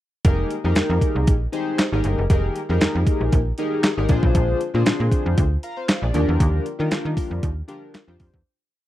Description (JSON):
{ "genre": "early-eighties boogie funk", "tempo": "117 BPM", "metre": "4/4", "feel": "straight", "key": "F dorian", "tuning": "A4 = 437 Hz", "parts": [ { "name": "chorused polysynth", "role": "accompaniment", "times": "0.2-8.4 s", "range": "D4 to Bb5", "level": "-24 LUFS", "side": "left 2 dB", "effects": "none" }, { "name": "slap-like FM bass", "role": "bass", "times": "0.2-8.4 s", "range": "F1 to Eb3", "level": "-21 LUFS", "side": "equal", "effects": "none" }, { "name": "clean 12-bit digital drum machine", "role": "drums", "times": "0.2-8.4 s", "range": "handclaps, hi-hat, kick drum, snare drum", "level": "-20 LUFS", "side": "equal", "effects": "overdrive" } ], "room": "little or no reverb", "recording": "dry, close 1970s-style studio recording", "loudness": "-18 LUFS", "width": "side -14 dB against mid", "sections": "0.2-8.5 verse", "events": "fade-out 6.4-8.5", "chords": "0.2 Fm11; 4.1 Bb7; 6.1 Ebmaj9", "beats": "| 0.25 0.76 1.27 1.79 | 2.30 2.81 3.33 3.84 | 4.35 4.87 5.38 5.89 | 6.40 6.92 7.43 7.94" }